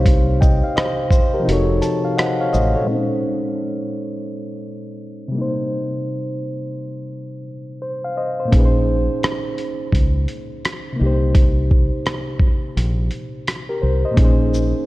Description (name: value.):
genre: lo-fi hip hop.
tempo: 85 BPM.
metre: 4/4.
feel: swing 65% on 16ths.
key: Bb dorian.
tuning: A4 = 440 Hz.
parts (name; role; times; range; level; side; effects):
reed electric piano; accompaniment; 0.0-14.9 s; Bb2 to A5; -21 LUFS; equal; cassette tape, low-pass filter.
deep dub fingered electric bass; bass; 0.0-2.7, 8.5-14.7 s; F1 to Db2; -20 LUFS; equal; none.
dusty soul sampler-style drum kit; drums; 0.1-2.7, 8.5-14.7 s; hi-hat, kick drum, rim click, shaker; -17 LUFS; equal; none.
room: moderate concert hall reverb, RT60 2.6 s.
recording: dark, warm production.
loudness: -17 LUFS.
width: side -18 dB against mid.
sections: 0.0-2.9 A section; 2.9-14.2 B section.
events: break 1.5-2.9; reed electric piano fill 1.5-2.9; filter sweep on reed electric piano 2.9-14.2.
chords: 0.0 Cm7; 1.5 F7b9b13; 2.9 Bbm11; 5.3 Cm7; 8.5 Bbm11; 11.0 Cm7; 14.2 Bbm11.